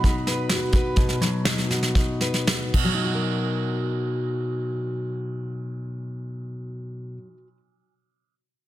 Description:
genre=indie folk with a building arrangement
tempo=108-132 BPM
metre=4/4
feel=straight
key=B major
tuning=A4 = 442 Hz
part: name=dark upright piano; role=melody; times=0.0-2.4 s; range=B5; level=-35 LUFS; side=right 7 dB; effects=tape echo
part: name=fingerpicked steel-string acoustic guitar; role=accompaniment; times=0.0-7.6 s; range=B2 to B4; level=-26 LUFS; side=left 1 dB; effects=none
part: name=soft brush drum kit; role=drums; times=0.0-2.9 s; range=crash cymbal, kick drum, snare drum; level=-24 LUFS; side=equal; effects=soft clipping on snare
room=light reverb, small room ambience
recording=dense, heavily limited modern master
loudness=-22 LUFS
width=side -14 dB against mid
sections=0.0-3.0 A section; 3.0-7.5 B section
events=slowing down 0.0-3.0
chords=0.0 B; 3.0 Bmaj7

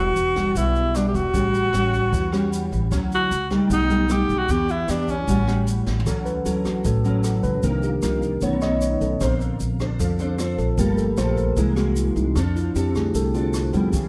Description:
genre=bossa nova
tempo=152 BPM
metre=4/4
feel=straight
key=unclear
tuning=A4 = 444 Hz
part: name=breathy alto saxophone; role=melody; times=0.0-5.7 s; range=C#4 to G4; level=-25 LUFS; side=equal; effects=none
part: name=mellow tine electric piano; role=accompaniment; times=0.0-1.4, 6.0-14.1 s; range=D3 to D#5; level=-27 LUFS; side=equal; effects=none
part: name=nylon-string guitar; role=accompaniment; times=0.0-14.1 s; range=A2 to C#5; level=-27 LUFS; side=equal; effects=ensemble chorus
part: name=upright bass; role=bass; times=0.0-14.1 s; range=E1 to F2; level=-27 LUFS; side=equal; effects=none
part: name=jazz brush drum kit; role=drums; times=0.2-14.0 s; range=hi-hat, kick drum, rim click, snare drum, toms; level=-33 LUFS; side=equal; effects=none
part: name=tube shaker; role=percussion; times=0.2-14.1 s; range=none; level=-43 LUFS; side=equal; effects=none
room=moderate plate reverb, RT60 1.2 s, small room ambience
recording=dreamy mix soaked in reverb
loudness=-22 LUFS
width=mono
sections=0.0-6.1 A section; 6.1-14.1 B section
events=drum fill 5.9; tine electric piano solo 6.1-14.1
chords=0.0 Em9; 1.3 A6; 2.9 Dmaj9; 3.7 B7b13; 4.5 Em7; 5.3 A6; 6.1 Dmaj9; 7.6 Cm11; 8.4 B9; 9.2 Bbmaj9; 10.8 Gm9; 11.6 Caug7; 12.4 F6

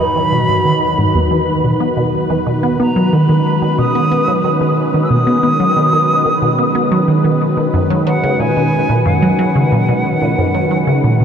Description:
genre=ambient, sequencer-driven space music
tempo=91 BPM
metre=4/4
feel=straight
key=unclear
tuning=A4 = 440 Hz
part: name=hollow concert flute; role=melody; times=0.0-11.2 s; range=F#5 to E6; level=-18 LUFS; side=right 1 dB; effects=tape echo
part: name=sweeping resonant pad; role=sustained chords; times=0.0-11.2 s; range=E2 to B4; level=-17 LUFS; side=left 1 dB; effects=chorus
part: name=resonant blip pluck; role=riff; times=0.0-11.2 s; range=E2 to B3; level=-15 LUFS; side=right 1 dB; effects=phaser, tape echo
room=wet huge ambient reverb, RT60 7.3 s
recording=dark, warm production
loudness=-12 LUFS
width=side -8 dB against mid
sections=0.0-11.2 A section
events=none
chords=0.0 Emaj7(no3); 2.5 B; 7.7 F#sus4

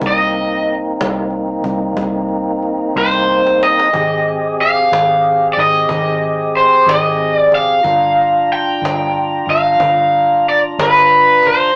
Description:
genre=slow blues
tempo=61 BPM (dotted quarters)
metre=12/8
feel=straight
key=unclear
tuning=A4 = 440 Hz
part: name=tonewheel organ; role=sustained chords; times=0.0-11.7 s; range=Bb3 to A#5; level=-22 LUFS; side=equal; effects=slow rotary speaker, overdrive
part: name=vintage muted fingered electric bass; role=bass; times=0.0-11.7 s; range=G1 to C2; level=-28 LUFS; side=equal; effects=none
part: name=cajon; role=drums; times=0.0-11.6 s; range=none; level=-27 LUFS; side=equal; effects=none
part: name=raw garage guitar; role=melody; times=0.1-11.8 s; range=B4 to G5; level=-14 LUFS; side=equal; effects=overdrive
room=moderate studio reverb, RT60 0.6 s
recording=rough rehearsal-room recording, small speaker sound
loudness=-14 LUFS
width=mono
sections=0.0-11.8 A section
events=drum fill 3.0-3.9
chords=0.0 Cm7; 3.9 Abmaj7; 7.8 Gm7

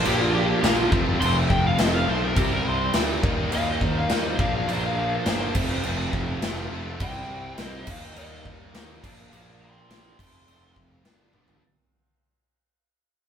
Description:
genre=quiet-loud alternative rock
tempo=104 BPM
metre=4/4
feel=straight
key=unclear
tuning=A4 = 440 Hz
part: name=lead guitar through a small cranked amp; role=melody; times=0.0-10.8 s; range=F4 to C6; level=-28 LUFS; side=left 1 dB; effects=overdrive
part: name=overdriven semi-hollow guitar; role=riff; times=0.0-11.6 s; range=F2 to E4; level=-28 LUFS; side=equal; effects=none
part: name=scooped high-gain guitar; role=riff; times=0.0-11.6 s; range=F2 to Eb4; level=-32 LUFS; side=equal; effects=distortion
part: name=fuzz picked electric bass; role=bass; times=0.1-11.6 s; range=F1 to Eb2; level=-30 LUFS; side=equal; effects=overdrive
part: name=big rock drum kit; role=drums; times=0.1-11.6 s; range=crash cymbal, kick drum, snare drum, toms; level=-26 LUFS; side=equal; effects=none
room=wet studio reverb, RT60 0.6 s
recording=band playing live in one room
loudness=-21 LUFS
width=side -8 dB against mid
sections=0.0-11.6 A section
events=fade-out 0.0-11.6; lead electric guitar solo 0.0-11.6; drum fill 11.3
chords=0.0 Bb; 0.9 F; 2.4 C; 3.2 Eb; 4.4 Bb; 5.6 F; 7.0 C; 7.9 Eb; 9.0 Bb; 10.2 F; 11.1 G

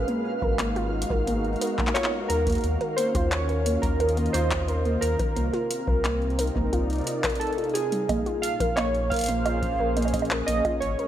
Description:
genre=IDM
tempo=88 BPM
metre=4/4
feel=straight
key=Bb minor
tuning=A4 = 440 Hz
part: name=warbly lo-fi synth keys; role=melody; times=0.0-11.1 s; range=Ab4 to F5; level=-28 LUFS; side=right 2 dB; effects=chorus, tape echo
part: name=warm analog pad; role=sustained chords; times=0.0-11.1 s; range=Bb2 to Eb5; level=-32 LUFS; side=left 1 dB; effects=chorus
part: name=warm sub bass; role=bass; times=0.0-11.0 s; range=Ab1 to Eb2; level=-28 LUFS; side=equal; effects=none
part: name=flickering grainy texture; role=texture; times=0.0-8.1 s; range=F5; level=-39 LUFS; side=right 2 dB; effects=built-in reverb
part: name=warbly dusty pluck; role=arpeggios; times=0.1-11.1 s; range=G3 to Bb4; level=-29 LUFS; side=right 1 dB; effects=chorus, ping-pong delay
part: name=electro analog drum machine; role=drums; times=0.1-11.1 s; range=bongos, handclaps, hi-hat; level=-31 LUFS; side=right 1 dB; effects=studio reverb
part: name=electronic kick drum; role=drums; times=0.4-10.8 s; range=none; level=-31 LUFS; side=equal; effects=studio reverb
room=light reverb, digital ambience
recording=none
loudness=-23 LUFS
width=side -11 dB against mid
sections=0.0-8.1 A section; 8.1-11.1 B section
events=none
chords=0.0 Abm9; 2.6 Ebm9; 5.4 Cm9; 8.1 Bbm9

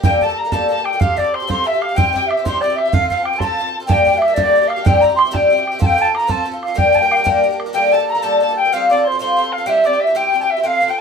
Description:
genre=celtic folk, Celtic jig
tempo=124 BPM (dotted quarters)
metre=6/8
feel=straight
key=G dorian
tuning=A4 = 442 Hz
part: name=breathy mellow wooden flute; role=melody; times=0.0-11.0 s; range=C5 to C6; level=-18 LUFS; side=right 2 dB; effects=none
part: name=wooden whistle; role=second line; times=0.0-11.0 s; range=D5 to C6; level=-19 LUFS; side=left 4 dB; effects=none
part: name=picked twelve-string acoustic guitar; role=accompaniment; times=0.0-11.0 s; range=G2 to Bb4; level=-18 LUFS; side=left 2 dB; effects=none
part: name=bodhran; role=percussion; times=0.0-7.7 s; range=none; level=-19 LUFS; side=right 2 dB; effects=none
room=wet studio reverb, RT60 0.5 s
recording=minimal, uncompressed stereo recording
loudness=-13 LUFS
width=side -6 dB against mid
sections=0.0-7.8 A section; 7.8-11.0 A section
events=none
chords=0.0 Gmadd9; 1.0 Fadd9; 2.0 C; 2.9 F; 3.9 Gm; 4.9 Cadd9/G; 5.8 F; 6.8 Gm; 7.8 Gmadd9; 8.7 Fadd9; 9.7 C

